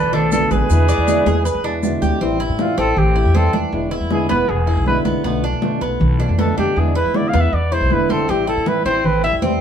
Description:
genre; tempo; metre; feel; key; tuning
latin, Cuban son and guajira; 158 BPM; 4/4; straight; A harmonic minor; A4 = 440 Hz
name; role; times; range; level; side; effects
warm trumpet; melody; 0.0-9.4 s; F4 to F5; -20 LUFS; equal; none
bright silver concert flute; second line; 0.0-1.8 s; B4 to D5; -28 LUFS; equal; none
Cuban tres; arpeggios; 0.0-9.6 s; B3 to D5; -24 LUFS; right 2 dB; none
upright bass; bass; 0.0-9.6 s; E1 to E3; -20 LUFS; equal; none
nylon-string guitar; accompaniment; 0.1-9.6 s; B2 to F4; -22 LUFS; left 2 dB; none
congas; percussion; 0.1-9.6 s; none; -22 LUFS; right 1 dB; none
maracas; percussion; 0.3-2.2 s; none; -34 LUFS; right 4 dB; none
room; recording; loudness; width
wet studio reverb, RT60 0.5 s; band playing live in one room; -15 LUFS; side -8 dB against mid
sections
0.0-2.2 A section; 2.2-9.6 B section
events
trumpet solo 2.2-9.6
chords
0.0 Bm7b5; 0.7 E7; 2.2 Am7; 3.7 E7; 5.2 Bm7b5; 6.8 E7; 8.3 Am7

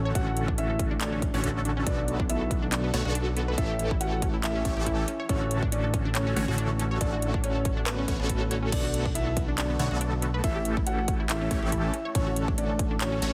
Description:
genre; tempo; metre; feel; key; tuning
future bass; 140 BPM; 4/4; swing 55% on 16ths, half-time; D major; A4 = 440 Hz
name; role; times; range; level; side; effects
dark grand piano; melody; 0.0-13.3 s; B3 to F#5; -35 LUFS; equal; sidechain pumping, tape echo
supersaw stab; riff; 0.0-13.3 s; D3 to C#5; -35 LUFS; equal; phaser, sidechain pumping
fat analog bass; bass; 0.0-13.3 s; A1 to B1; -32 LUFS; equal; sidechain pumping
unison pluck; arpeggios; 0.1-13.3 s; B3 to D5; -40 LUFS; equal; sidechain pumping, dub echo
electronic kick drum; drums; 0.2-12.9 s; none; -32 LUFS; equal; overdrive
trap drum kit; drums; 0.2-13.3 s; crash cymbal, handclaps, hi-hat, ride cymbal; -36 LUFS; equal; none
room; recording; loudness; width
little or no reverb; heavily compressed radio sound; -27 LUFS; mono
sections
0.0-13.3 A section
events
none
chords
0.0 Dmaj7/A; 1.9 Bm7; 3.6 A7; 5.1 Dmaj7/A; 8.7 Bm7; 10.4 A7; 11.9 Dmaj7/A

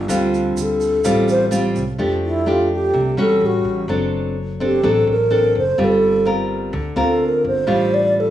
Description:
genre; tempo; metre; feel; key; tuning
bossa nova; 126 BPM; 4/4; straight; F major; A4 = 440 Hz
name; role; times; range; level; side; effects
nylon-string guitar; accompaniment; 0.0-8.3 s; A2 to Bb4; -19 LUFS; left 1 dB; plate reverb
upright bass; bass; 0.0-8.3 s; F#1 to F2; -26 LUFS; right 1 dB; none
egg shaker; percussion; 0.1-2.0 s; none; -33 LUFS; right 8 dB; none
wooden-headed alto flute; melody; 0.2-8.3 s; E4 to D5; -18 LUFS; equal; cassette tape, plate reverb
room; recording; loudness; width
wet small room reverb, RT60 0.5 s; home recording on cassette, studio reverb; -15 LUFS; side -12 dB against mid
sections
0.0-2.0 A section; 2.0-8.3 A section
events
alto flute solo 0.0-8.3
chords
0.1 Dm7; 2.0 F69; 3.4 A6; 3.9 D7/F#; 5.8 Gm11; 7.7 F69/A

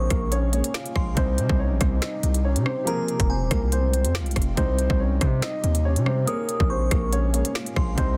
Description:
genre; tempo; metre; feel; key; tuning
hip hop, drill; 141 BPM; 4/4; half-time; unclear; A4 = 439 Hz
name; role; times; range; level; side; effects
dark grand piano; melody; 0.0-8.2 s; Bb3 to F5; -31 LUFS; equal; digital delay
glassy synth bell; second line; 0.0-3.7, 6.3-8.0 s; Ab5 to Eb6; -37 LUFS; equal; chorus, tremolo, digital delay
felt-muted upright piano; accompaniment; 0.0-8.2 s; C3 to Db5; -35 LUFS; equal; none
granular cloud pad; sustained chords; 0.0-8.2 s; C3 to G4; -39 LUFS; equal; built-in reverb
distorted 808-style bass; bass; 0.0-8.2 s; Eb1 to C3; -26 LUFS; equal; distortion
drill drum kit; drums; 0.1-8.1 s; finger snaps, hi-hat, kick drum, rim click, snare drum; -27 LUFS; equal; soft clipping on snare
room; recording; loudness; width
little or no reverb; dense, heavily limited modern master; -23 LUFS; mono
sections
0.0-8.2 A section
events
none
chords
0.0 Bbm7; 1.2 Cm; 2.9 Fm; 4.6 Cm; 6.3 Bbm7

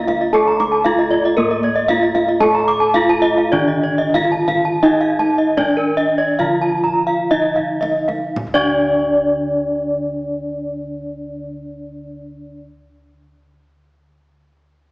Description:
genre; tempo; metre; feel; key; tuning
Balinese gamelan; 54-116 BPM; 4/4; straight; D pelog; A4 = 435 Hz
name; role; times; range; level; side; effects
gamelan-type bronze metallophone; melody; 0.0-12.6 s; Bb3 to A4; -19 LUFS; equal; none
gamelan-type bronze metallophone; accompaniment; 0.0-12.6 s; D3 to Bb3; -28 LUFS; equal; none
gamelan-type bronze metallophone; arpeggios; 0.0-12.6 s; Bb4 to D6; -22 LUFS; right 1 dB; none
gamelan-type bossed gongs; bass; 0.0-12.6 s; D2 to A4; -22 LUFS; equal; none
gamelan-type bronze metallophone; arpeggios; 0.1-12.6 s; Bb4 to A5; -19 LUFS; equal; none
kendang; percussion; 0.1-8.9 s; none; -31 LUFS; right 1 dB; none
room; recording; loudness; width
moderate concert hall reverb, RT60 1.8 s; small speaker sound; -14 LUFS; side -24 dB against mid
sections
0.0-8.4 A section; 8.4-12.8 B section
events
slowing down 2.4-8.4; drum fill 7.3-8.4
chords
none

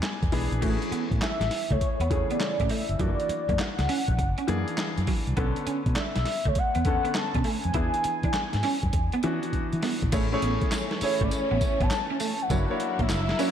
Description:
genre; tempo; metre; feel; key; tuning
R&B, new jack swing; 101 BPM; 4/4; swing 66% on 16ths; A major; A4 = 440 Hz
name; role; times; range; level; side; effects
warm concert grand piano; accompaniment; 0.0-13.5 s; C#3 to B5; -32 LUFS; left 2 dB; slapback echo
boom bap sampler-style drum kit; drums; 0.0-13.5 s; crash cymbal, handclaps, hi-hat, kick drum, snare drum, tambourine; -29 LUFS; equal; none
vintage muted fingered electric bass; bass; 0.2-13.3 s; F#1 to E3; -29 LUFS; equal; none
clean electric guitar; riff; 0.3-13.5 s; F#3 to E4; -33 LUFS; right 5 dB; ensemble chorus
warm velvety synth lead; melody; 1.2-13.5 s; C#5 to A5; -30 LUFS; equal; chorus, slapback echo
warm studio string section; sustained chords; 10.1-13.5 s; E3 to E4; -34 LUFS; left 2 dB; none
room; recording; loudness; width
moderate lush hall reverb, RT60 1.7 s; big arena sound; -24 LUFS; side -9 dB against mid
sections
0.6-10.1 A section; 10.1-13.5 B section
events
grand piano fill 0.0-0.6; drum fill 9.5-10.1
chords
0.0 E7; 0.6 Amaj7; 3.0 F#7b13; 5.4 Bm9; 7.7 E7; 10.1 Amaj7; 12.5 F#7b13

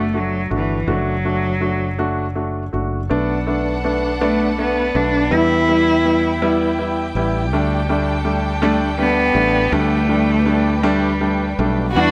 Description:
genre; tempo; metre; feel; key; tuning
six-eight pop ballad; 54 BPM (dotted quarters); 6/8; straight; unclear; A4 = 440 Hz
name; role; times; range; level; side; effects
warm cello; melody; 0.0-12.1 s; E3 to E4; -21 LUFS; equal; digital delay
warm grand piano; accompaniment; 0.0-12.1 s; E3 to F#4; -23 LUFS; equal; none
fretless electric bass; bass; 0.0-12.1 s; F#1 to E2; -25 LUFS; equal; none
warm studio string section; sustained chords; 3.1-12.1 s; G3 to B5; -28 LUFS; equal; none
warm studio violin section; second line; 12.0-12.1 s; F#4; -20 LUFS; equal; none
room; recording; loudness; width
light reverb, small room ambience; none; -18 LUFS; mono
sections
0.0-3.1 A section; 3.1-12.0 B section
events
none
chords
0.0 D/F#; 3.1 Bm7; 5.3 Em; 7.5 Dsus4

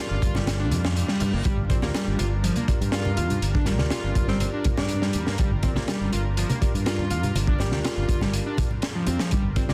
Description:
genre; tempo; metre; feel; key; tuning
breakbeat, breaks; 122 BPM; 4/4; straight; G minor; A4 = 440 Hz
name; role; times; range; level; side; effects
lush unison pad; sustained chords; 0.0-9.7 s; G3 to D5; -39 LUFS; equal; chorus, sidechain pumping
overdriven synth lead; riff; 0.0-9.7 s; F3 to F4; -32 LUFS; equal; distortion, tape echo
bell-like tine electric piano; stabs; 0.0-9.7 s; F4 to D5; -38 LUFS; equal; vintage 12-bit sampler grit, tape echo
modern bright fingered electric bass; bass; 0.1-9.7 s; G1 to G2; -28 LUFS; equal; none
crunchy breakbeat drum kit; drums; 0.2-9.7 s; hi-hat, kick drum, snare drum; -28 LUFS; equal; none
congas; percussion; 0.2-9.7 s; none; -34 LUFS; equal; none
reverse cymbal; sound effects; 0.8-1.5 s; none; -41 LUFS; equal; none
clear alto saxophone; melody; 3.2-7.8 s; C4 to G4; -38 LUFS; equal; old record sound, tape echo
room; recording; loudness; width
light reverb; dense, heavily limited modern master, vinyl crackle; -24 LUFS; mono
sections
0.0-9.7 A section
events
kick drops out 0.5-1.5; reverse cymbal 0.8-1.5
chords
0.0 Gm7

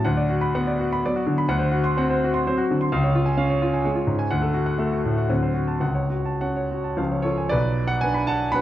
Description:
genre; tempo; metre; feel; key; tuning
classical, romantic triple-time dance for piano with dotted rhythms; 97-136 BPM; 3/4; rubato; unclear; A4 = 440 Hz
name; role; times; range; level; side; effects
warm grand piano; solo; 0.0-8.6 s; B1 to C6; -20 LUFS; equal; none
room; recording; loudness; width
wet recital hall reverb, RT60 1.5 s; dark, warm production; -20 LUFS; side -13 dB against mid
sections
0.0-7.5 A section; 7.5-8.6 A section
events
none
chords
0.1 Bm/D; 1.5 D7; 2.9 C#; 4.3 D; 5.3 D7; 5.8 F#m/C#; 7.0 C#; 7.5 Bm

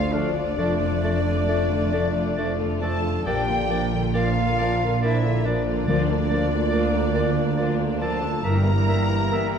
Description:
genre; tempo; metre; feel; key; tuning
classical; 68 BPM; 3/4; rubato; unclear; A4 = 440 Hz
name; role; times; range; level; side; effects
muted studio violin section; melody; 0.0-9.6 s; D5 to Bb5; -32 LUFS; left 2 dB; none
mellow clarinet; second line; 0.0-9.6 s; D4 to Bb4; -33 LUFS; left 2 dB; none
mellow hollow concert flute; second line; 0.0-9.6 s; D5 to Bb5; -30 LUFS; left 1 dB; none
muted studio violin section; second line; 0.0-9.6 s; G3 to F4; -33 LUFS; left 4 dB; none
muted studio viola section; accompaniment; 0.0-9.6 s; D3 to G3; -32 LUFS; equal; none
mellow French horn section; sustained chords; 0.0-9.6 s; F3 to F4; -30 LUFS; left 2 dB; none
concert harp; arpeggios; 0.0-9.6 s; G2 to D6; -30 LUFS; left 8 dB; none
muted studio cello section; bass; 0.0-9.2 s; D2 to Bb2; -28 LUFS; right 3 dB; none
muted studio double bass section; bass; 0.0-9.2 s; F1 to D2; -27 LUFS; right 3 dB; none
bright oboe; second line; 0.1-9.5 s; D5 to F5; -35 LUFS; equal; none
warm bassoon; accompaniment; 0.1-9.5 s; A3 to Bb3; -32 LUFS; right 1 dB; none
timpani; percussion; 5.9-7.1 s; D3; -29 LUFS; left 4 dB; none
room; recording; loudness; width
moderate scoring stage reverb, RT60 1.6 s; dark, warm production; -20 LUFS; side -7 dB against mid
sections
0.0-9.6 A section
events
none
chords
0.0 Dm; 0.6 Dm/F; 3.3 Bb; 5.9 Bb/D; 8.4 Edim/G

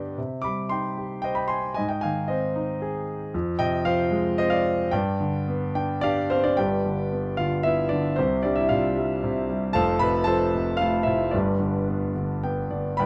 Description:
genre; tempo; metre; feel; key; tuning
classical, lyrical solo piano; 113 BPM; 3/4; rubato; unclear; A4 = 438 Hz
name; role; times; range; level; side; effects
warm concert grand piano; solo; 0.0-13.1 s; F1 to D6; -25 LUFS; equal; none
room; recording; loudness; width
light reverb; close, detailed microphones; -25 LUFS; mono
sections
0.0-6.6 A section; 6.6-13.1 B section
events
grand piano fill 5.5-6.6, 12.2-13.0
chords
0.2 Cm; 1.8 Ab; 3.3 Fm; 4.9 G; 8.2 Csus2; 9.7 F; 11.3 G

